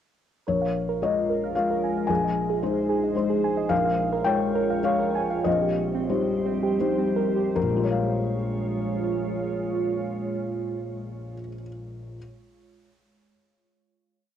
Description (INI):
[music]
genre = neoclassical piano and strings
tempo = 78-113 BPM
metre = 3/4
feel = rubato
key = Bb dorian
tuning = A4 = 440 Hz
[part]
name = felt-muted upright piano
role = accompaniment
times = 0.5-12.2 s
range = Bb1 to Ab5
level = -25 LUFS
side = left 4 dB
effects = cassette tape
[part]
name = glassy FM pad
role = sustained chords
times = 1.0-11.4 s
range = G3 to Db5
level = -30 LUFS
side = right 2 dB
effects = ensemble chorus, built-in reverb, cassette tape
[part]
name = harp-like synth pluck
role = arpeggios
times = 0.5-7.5 s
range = C4 to Ab5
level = -28 LUFS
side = right 8 dB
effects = chorus, cassette tape, tape echo
[sound]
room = light reverb, studio ambience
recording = home recording on cassette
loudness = -23 LUFS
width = side -9 dB against mid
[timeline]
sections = 0.5-7.6 theme; 7.6-12.2 final chord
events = slowing down 2.9-7.6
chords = 0.5 Bbm7; 2.1 Ab/Bb; 3.7 Bbm7; 5.5 Cm7/Bb; 7.6 Bbm7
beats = | 0.47 1.02 1.56 | 2.09 2.63 3.17 | 3.71 4.26 4.84 | 5.46 6.11 6.81 | 7.55 8.32 9.09 | 9.85 10.62 11.39